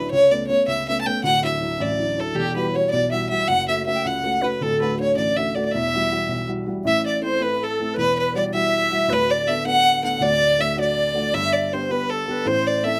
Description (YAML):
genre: celtic folk, Celtic jig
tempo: 107 BPM (dotted quarters)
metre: 6/8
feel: straight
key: E dorian, A dorian from 6.9 s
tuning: A4 = 440 Hz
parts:
  - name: rich fiddle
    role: melody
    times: 0.0-13.0 s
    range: G4 to A5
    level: -23 LUFS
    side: equal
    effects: none
  - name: dark upright piano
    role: accompaniment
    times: 0.0-13.0 s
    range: D1 to A4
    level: -28 LUFS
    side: equal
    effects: none
  - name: bright wooden flute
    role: second line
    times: 2.3-12.9 s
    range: G4 to G5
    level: -29 LUFS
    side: equal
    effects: none
room: light reverb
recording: close, detailed microphones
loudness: -21 LUFS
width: mono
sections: 0.0-6.9 A section; 6.9-13.0 B section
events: none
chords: 0.1 Aadd9/C#; 1.2 Dadd9; 2.4 Emadd9; 3.5 F#m; 4.6 D; 5.7 Emadd9; 6.9 Am; 8.0 Emadd9; 9.1 Bm7/D; 10.2 D; 11.3 G; 12.5 Am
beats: | 0.12 0.68 | 1.24 1.80 | 2.36 2.92 | 3.49 4.05 | 4.61 5.17 | 5.73 6.29 | 6.86 7.42 | 7.98 8.54 | 9.10 9.66 | 10.22 10.78 | 11.35 11.91 | 12.47